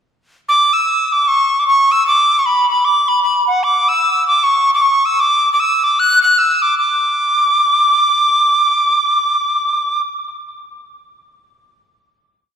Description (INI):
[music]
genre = celtic folk, Celtic hornpipe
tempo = 152 BPM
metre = 4/4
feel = swing 60% on 8ths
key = D major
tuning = A4 = 437 Hz
[part]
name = bright mid whistle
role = solo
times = 0.5-10.0 s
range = F#5 to F#6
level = -11 LUFS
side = equal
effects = none
[sound]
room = wet church reverb, RT60 2.6 s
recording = recorded in a church or concert hall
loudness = -11 LUFS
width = side -8 dB against mid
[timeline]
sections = 0.5-6.8 A section; 6.8-9.9 final note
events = none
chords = none